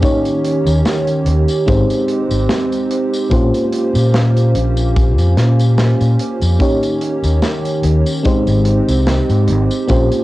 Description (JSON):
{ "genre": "vaporwave", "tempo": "73 BPM", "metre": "4/4", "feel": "swing 55% on 16ths", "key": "unclear", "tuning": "A4 = 439 Hz", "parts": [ { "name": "FM electric piano with soft pad layer", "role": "accompaniment", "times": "0.0-10.2 s", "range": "Ab3 to Db5", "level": "-18 LUFS", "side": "equal", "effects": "tremolo, lush chorus, analog delay" }, { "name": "warbly tape-like pad", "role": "sustained chords", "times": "0.0-10.2 s", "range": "Eb3 to G4", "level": "-21 LUFS", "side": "right 2 dB", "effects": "chorus, built-in reverb" }, { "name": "kick drum", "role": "drums", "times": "0.0-10.1 s", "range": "none", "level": "-18 LUFS", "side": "equal", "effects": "cassette tape" }, { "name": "modern studio drum kit", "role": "drums", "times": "0.0-10.2 s", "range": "hi-hat, snare drum, tambourine", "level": "-23 LUFS", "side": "equal", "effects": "cassette tape" }, { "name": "overdriven fingered electric bass", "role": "bass", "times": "0.7-10.1 s", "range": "Ab1 to Bb2", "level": "-14 LUFS", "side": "equal", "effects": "none" } ], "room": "little or no reverb", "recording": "home recording on cassette", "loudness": "-12 LUFS", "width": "side -17 dB against mid", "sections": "0.0-10.2 A section", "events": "none", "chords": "0.0 Eb7; 1.7 Abmaj7; 3.3 Bbm69; 6.6 Eb7; 8.2 Abmaj7", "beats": "| 0.03 0.85 1.67 2.50 | 3.32 4.14 4.96 5.78 | 6.60 7.43 8.25 9.07 | 9.89" }